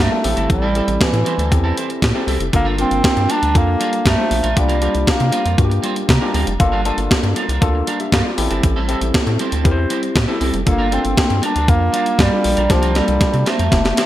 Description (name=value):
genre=early-eighties boogie funk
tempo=118 BPM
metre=4/4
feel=straight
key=G dorian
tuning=A4 = 444 Hz
part: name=clear bass clarinet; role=melody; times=0.0-5.6, 10.7-14.1 s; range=E3 to D4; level=-20 LUFS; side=right 1 dB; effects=digital delay
part: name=electric guitar at the edge of break-up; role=riff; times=0.0-14.1 s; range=F3 to C5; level=-26 LUFS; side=right 5 dB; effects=lush chorus
part: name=rubbery square bass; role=bass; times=0.0-13.9 s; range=F1 to C3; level=-19 LUFS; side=equal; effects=none
part: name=clean 12-bit digital drum machine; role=drums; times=0.0-14.1 s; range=hi-hat, kick drum, snare drum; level=-18 LUFS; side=equal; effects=gated reverb
part: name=overdriven tine electric piano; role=accompaniment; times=0.1-14.1 s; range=A3 to Bb5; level=-22 LUFS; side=left 3 dB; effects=phaser
room=light reverb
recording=bright 1980s-style digital production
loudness=-14 LUFS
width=side -13 dB against mid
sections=0.0-14.1 A section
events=tine electric piano fill 5.8-6.6; drum fill 12.7-14.1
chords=0.2 Am7; 2.5 Gm7; 4.6 C7sus4; 6.6 Gm7; 8.4 Am7; 10.7 Gm7; 12.7 C7sus4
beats=| 0.50 1.01 1.52 2.02 | 2.53 3.04 3.55 4.06 | 4.57 5.08 5.58 6.09 | 6.60 7.11 7.62 8.13 | 8.63 9.14 9.65 10.16 | 10.67 11.18 11.69 12.19 | 12.70 13.21 13.72